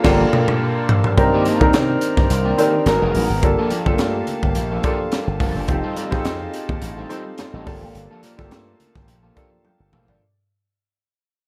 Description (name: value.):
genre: polished 1980s jazz-funk pop.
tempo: 106 BPM.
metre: 4/4.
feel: swing 54% on 16ths.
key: G minor.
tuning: A4 = 439 Hz.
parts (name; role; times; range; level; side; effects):
warm concert grand piano; accompaniment; 0.0-10.4 s; A3 to G5; -23 LUFS; equal; lush chorus, plate reverb.
hand-pumped harmonium; sustained chords; 0.0-10.2 s; Eb3 to Bb5; -30 LUFS; equal; plate reverb.
slap bass with an envelope filter; bass; 0.0-10.2 s; F1 to C3; -25 LUFS; equal; none.
crisp fusion drum kit; drums; 0.0-10.2 s; crash cymbal, hi-hat, kick drum, snare drum, toms; -23 LUFS; equal; none.
electric guitar at the edge of break-up; riff; 0.1-10.2 s; Eb3 to C5; -28 LUFS; equal; analog chorus.
congas; percussion; 1.2-10.1 s; none; -37 LUFS; equal; none.
room: moderate booth ambience, RT60 0.2 s.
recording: none.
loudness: -19 LUFS.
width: mono.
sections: 0.0-1.2 A section; 1.2-10.2 B section.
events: drum fill 0.0-1.2, 9.6-10.2; band accent 0.0-1.2; fade-out 1.2-10.2.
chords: 0.0 Gm9; 1.2 Cm9; 2.9 Abm9; 3.4 Gm9; 5.7 F9; 7.7 Gm9.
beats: 0.04 0.60 | 1.17 1.74 2.30 2.87 | 3.43 3.99 4.56 5.12 | 5.69 6.25 6.82 7.38 | 7.95 8.52 9.08 9.64.